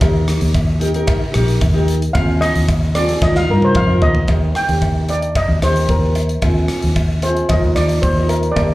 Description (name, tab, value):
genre	calypso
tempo	112 BPM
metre	4/4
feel	straight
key	Eb major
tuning	A4 = 445 Hz
part	steel pan	melody	0.0-8.7 s	Bb4 to G5	-19 LUFS	equal	slapback echo
part	nylon-string guitar	accompaniment	0.0-8.7 s	C4 to Bb4	-22 LUFS	equal	slapback echo
part	fingered electric bass	bass	0.0-8.7 s	Bb1 to G2	-16 LUFS	equal	none
part	gated 80s drum kit	drums	0.0-8.7 s	hi-hat, kick drum, rim click, snare drum, toms	-21 LUFS	equal	none
part	cowbell	percussion	0.0-8.7 s	none	-29 LUFS	left 1 dB	slapback echo
room	light reverb, small room ambience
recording	live gig heard through the venue's PA, club ambience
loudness	-13 LUFS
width	side -17 dB against mid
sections	0.0-4.3 A section; 4.3-8.7 B section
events	steel pan solo 0.0-4.3; drum fill 3.2-4.3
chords	0.0 Eb; 2.1 Fm7/Eb; 3.2 Bbsus4/Eb; 4.3 Eb; 6.4 Fm7/Eb; 7.5 Bbsus4/Eb